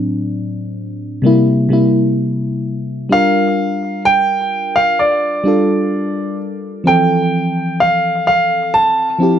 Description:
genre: R&B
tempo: 64 BPM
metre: 4/4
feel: straight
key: unclear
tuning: A4 = 440 Hz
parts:
  - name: mellow FM electric piano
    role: accompaniment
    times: 0.0-9.4 s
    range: A2 to Bb4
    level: -16 LUFS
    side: left 1 dB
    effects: chorus
  - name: warm concert grand piano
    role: melody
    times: 3.1-9.4 s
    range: D5 to A5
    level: -14 LUFS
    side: right 1 dB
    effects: tape echo
room: light reverb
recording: dark, warm production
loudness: -13 LUFS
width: side -9 dB against mid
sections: 0.0-3.1 A section; 3.1-9.4 B section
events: none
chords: 0.0 D7/A; 1.2 C7; 3.1 Gm7; 6.9 Fmaj7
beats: 0.30 1.24 2.17 | 3.11 4.05 4.99 5.92 | 6.86 7.80 8.74

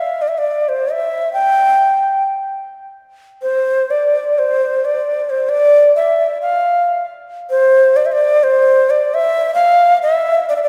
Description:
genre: balkan folk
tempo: free time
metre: none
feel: none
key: unclear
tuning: A4 = 440 Hz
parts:
  - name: breathy reedy low ney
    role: solo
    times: 0.0-10.7 s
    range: C5 to G5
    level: -15 LUFS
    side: equal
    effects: none
room: wet church reverb, RT60 2.7 s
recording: recorded in a church or concert hall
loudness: -14 LUFS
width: mono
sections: 0.0-7.5 A section; 7.5-10.7 B section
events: none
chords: none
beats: free time

